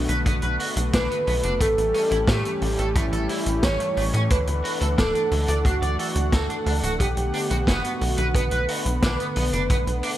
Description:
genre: synthwave.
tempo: 89 BPM.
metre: 4/4.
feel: straight.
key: B minor.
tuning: A4 = 441 Hz.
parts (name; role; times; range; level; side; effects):
warm velvety synth lead; melody; 0.0-10.2 s; D4 to C#5; -27 LUFS; right 1 dB; chorus, digital delay.
soft synth bell; second line; 0.0-10.2 s; D4 to C#5; -33 LUFS; right 1 dB; none.
warm analog pad; sustained chords; 0.0-10.2 s; D3 to F#5; -30 LUFS; left 1 dB; chorus.
tight sequencer bass; bass; 0.0-10.0 s; D1 to A2; -25 LUFS; equal; tube saturation.
electric guitar at the edge of break-up; riff; 0.1-10.1 s; A3 to D5; -31 LUFS; right 1 dB; lush chorus, digital delay.
vintage drum kit; drums; 0.1-10.2 s; hi-hat, snare drum; -28 LUFS; equal; none.
kick drum; drums; 0.3-9.8 s; none; -25 LUFS; equal; none.
room: moderate lush hall reverb, RT60 1.9 s.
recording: bright 1980s-style digital production.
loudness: -20 LUFS.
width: side -13 dB against mid.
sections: 0.0-10.2 A section.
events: none.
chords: 0.0 Bm7; 1.6 A7; 4.3 Dadd9; 7.0 Bm7.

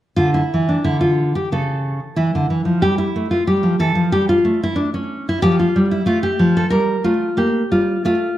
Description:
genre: classical, baroque-style dance for nylon-string guitar.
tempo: 91 BPM.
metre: 4/4.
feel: rubato.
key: D minor.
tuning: A4 = 438 Hz.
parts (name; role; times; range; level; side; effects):
nylon-string guitar; solo; 0.2-8.4 s; C#3 to Bb4; -15 LUFS; equal; slapback echo.
room: light reverb.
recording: close, detailed microphones, lossy compression artefacts.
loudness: -15 LUFS.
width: side -13 dB against mid.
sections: 0.2-8.4 A section.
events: none.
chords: 0.2 Dmadd9; 1.5 A/C#; 2.8 A5; 5.4 Fadd9; 6.7 Gm.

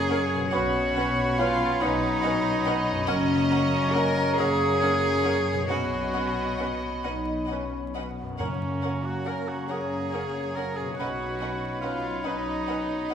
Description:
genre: cinematic, emotional film score for orchestra.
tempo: 46 BPM (dotted quarters).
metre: 6/8.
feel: rubato.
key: unclear.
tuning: A4 = 441 Hz.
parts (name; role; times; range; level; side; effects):
warm cello; melody; 0.0-13.1 s; C#4 to A#4; -30 LUFS; right 1 dB; none.
warm studio violin section; melody; 0.0-13.1 s; A#4 to D#5; -37 LUFS; right 1 dB; none.
hollow concert flute; second line; 0.0-13.1 s; A#5 to B5; -35 LUFS; right 1 dB; none.
warm clarinet; second line; 0.0-13.1 s; C#5; -34 LUFS; left 4 dB; none.
warm cor anglais; second line; 0.0-13.1 s; C#4 to A#4; -32 LUFS; right 2 dB; none.
warm French horn section; sustained chords; 0.0-13.1 s; A#3 to D#4; -35 LUFS; left 3 dB; none.
concert harp; arpeggios; 0.0-13.1 s; F#2 to C#5; -37 LUFS; left 4 dB; none.
dark studio double bass section; bass; 0.0-13.1 s; F#1 to B1; -34 LUFS; equal; none.
warm studio cello section; bass; 0.0-13.1 s; F#2 to B2; -33 LUFS; equal; none.
warm studio violin section; second line; 0.1-13.1 s; C#5 to F#5; -38 LUFS; left 1 dB; none.
warm studio viola section; accompaniment; 0.1-13.1 s; C#4 to B4; -36 LUFS; right 1 dB; none.
timpani; percussion; 8.4-9.7 s; F#2; -36 LUFS; equal; none.
room: wet scoring stage reverb, RT60 1.6 s.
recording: minimal, uncompressed stereo recording, vinyl crackle.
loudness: -24 LUFS.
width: side -8 dB against mid.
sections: 0.0-13.1 A section.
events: none.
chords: 0.0 F#; 0.5 Badd9; 3.1 F#; 5.7 Badd9; 8.4 F#; 11.0 Badd9.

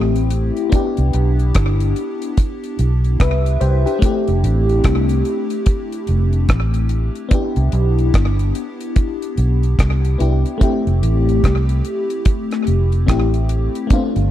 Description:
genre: lovers rock reggae.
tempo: 73 BPM.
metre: 4/4.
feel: swing 62% on 16ths.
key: unclear.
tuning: A4 = 440 Hz.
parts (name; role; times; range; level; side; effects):
FM electric piano with soft pad layer; accompaniment; 0.0-14.3 s; A3 to E5; -20 LUFS; left 2 dB; chorus, phaser, slapback echo.
vintage muted fingered electric bass; bass; 0.0-14.3 s; F1 to C2; -16 LUFS; equal; none.
deep reggae drum kit; drums; 0.2-14.3 s; hi-hat, kick drum, rim click; -17 LUFS; equal; none.
room: studio reverb.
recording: dry, close 1970s-style studio recording.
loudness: -15 LUFS.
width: side -12 dB against mid.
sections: 0.0-14.3 A section.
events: none.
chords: 0.0 Fmaj7 (rootless); 0.7 Cmaj9; 4.0 Fmaj7; 7.3 Cmaj9; 10.6 Fmaj7.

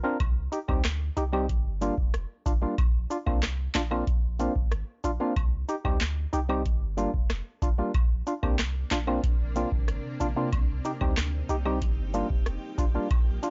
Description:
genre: dancehall.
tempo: 93 BPM.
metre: 4/4.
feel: straight.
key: C minor.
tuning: A4 = 440 Hz.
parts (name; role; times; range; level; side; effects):
percussive organ stab; accompaniment; 0.0-13.5 s; G3 to Bb4; -31 LUFS; equal; chorus, sidechain pumping.
punchy sub bass; bass; 0.2-13.4 s; F1 to D2; -33 LUFS; equal; none.
booming analog drum machine; drums; 0.2-13.5 s; handclaps, hi-hat, kick drum, rim click, snare drum; -28 LUFS; equal; none.
woodblock and cabasa; percussion; 0.2-13.5 s; none; -44 LUFS; equal; none.
granular cloud pad; sustained chords; 8.9-13.5 s; C3 to G4; -41 LUFS; equal; built-in reverb, sidechain pumping.
room: digital ambience.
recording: dry, gritty hardware recording, nothing above 7.6 kHz.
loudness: -28 LUFS.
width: mono.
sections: 0.0-13.5 A section.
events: none.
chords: 0.2 Cm; 1.5 Gm7; 2.8 Bbadd9; 5.4 Cm; 6.7 Gm7; 7.9 Bbadd9; 10.5 Cm; 11.8 Gm7.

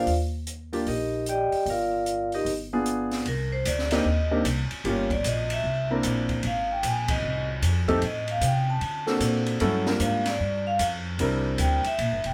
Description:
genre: jazz, small-group swing and bop.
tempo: 151 BPM.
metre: 4/4.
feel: swing 65% on 8ths.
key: Eb major.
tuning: A4 = 440 Hz.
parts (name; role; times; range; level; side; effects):
vibraphone with medium hard mallets; melody; 0.0-12.3 s; Eb4 to A5; -30 LUFS; equal; none.
warm concert grand piano; accompaniment; 0.0-11.8 s; F#3 to Bb4; -28 LUFS; equal; none.
upright bass; bass; 0.0-12.3 s; E1 to D3; -31 LUFS; equal; none.
open jazz drum kit; drums; 0.1-12.3 s; hi-hat, kick drum, ride cymbal, snare drum; -35 LUFS; equal; none.
room: light reverb.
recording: band playing live in one room.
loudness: -26 LUFS.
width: mono.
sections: 0.0-3.3 A section; 3.3-12.3 B section.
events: band accent 7.0.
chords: 0.1 Ebmaj9; 2.5 G7b9; 3.3 Cm9; 4.8 Gm7b5; 5.6 C7; 6.4 Fm7; 8.0 Am7b5; 8.8 D7b13; 9.6 Gm7; 11.2 C9.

